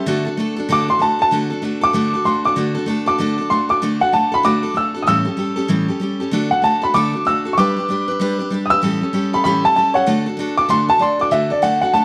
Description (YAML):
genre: rock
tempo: 192 BPM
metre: 4/4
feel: swing 62% on 8ths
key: D major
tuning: A4 = 440 Hz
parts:
  - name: warm upright piano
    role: melody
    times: 0.0-12.0 s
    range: C#5 to E6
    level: -19 LUFS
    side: equal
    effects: none
  - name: picked steel-string acoustic guitar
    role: accompaniment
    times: 0.0-12.0 s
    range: A2 to B4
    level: -22 LUFS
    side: equal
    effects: none
room: moderate echo chamber reverb, RT60 1.2 s, small room reverb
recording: none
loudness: -18 LUFS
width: mono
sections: 0.0-1.3 A section; 1.3-11.3 A section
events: upright piano solo 0.0-11.3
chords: 0.1 D; 5.1 A7; 6.3 D; 7.6 G; 8.8 A7; 10.1 D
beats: | 0.09 0.40 0.71 1.02 | 1.33 1.64 1.95 2.27 | 2.58 2.89 3.20 3.51 | 3.83 4.14 4.45 4.76 | 5.07 5.39 5.70 6.01 | 6.33 6.64 6.95 7.26 | 7.58 7.89 8.20 8.51 | 8.82 9.14 9.45 9.76 | 10.07 10.39 10.70 11.01 | 11.32 11.63 11.95